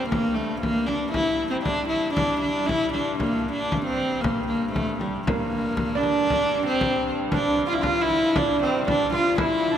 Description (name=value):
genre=medieval dance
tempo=116 BPM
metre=2/4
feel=straight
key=G dorian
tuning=A4 = 437 Hz
part: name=rich viola da gamba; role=melody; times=0.0-9.8 s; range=G3 to F4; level=-23 LUFS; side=equal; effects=none
part: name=warm hurdy-gurdy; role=drone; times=0.0-9.8 s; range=G2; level=-32 LUFS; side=left 1 dB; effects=none
part: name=frame drum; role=percussion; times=0.1-9.8 s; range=none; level=-29 LUFS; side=left 1 dB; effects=none
part: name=lute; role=second line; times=5.3-9.8 s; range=Bb3 to F4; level=-26 LUFS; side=right 4 dB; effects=none
room=wet cathedral reverb, RT60 4.3 s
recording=none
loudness=-21 LUFS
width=side -9 dB against mid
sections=0.0-5.3 A section; 5.3-9.8 A section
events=none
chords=none